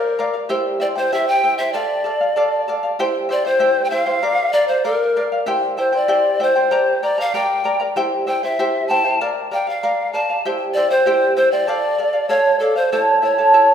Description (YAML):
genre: andean folk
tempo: 97 BPM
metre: 2/4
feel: straight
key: unclear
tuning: A4 = 440 Hz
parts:
  - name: polished pan flute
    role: melody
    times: 0.0-13.7 s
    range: A4 to A5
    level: -18 LUFS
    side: equal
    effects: none
  - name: charango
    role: accompaniment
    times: 0.0-13.7 s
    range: E4 to Bb5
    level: -19 LUFS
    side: equal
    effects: none
room: wet recital hall reverb, RT60 1.5 s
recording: recorded in a church or concert hall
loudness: -16 LUFS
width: side -8 dB against mid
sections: 0.0-3.0 A section; 3.0-12.9 A section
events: none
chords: 0.0 Bb; 0.5 C; 1.7 Dm; 3.0 C; 4.2 Bb; 5.5 C; 6.7 Gm; 8.0 C; 9.2 Bb; 10.4 C; 11.7 Dm; 12.9 A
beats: | 0.50 1.12 | 1.75 2.37 | 2.99 3.61 | 4.23 4.85 | 5.47 6.10 | 6.72 7.34 | 7.96 8.58 | 9.20 9.82 | 10.44 11.06 | 11.68 12.30 | 12.92 13.54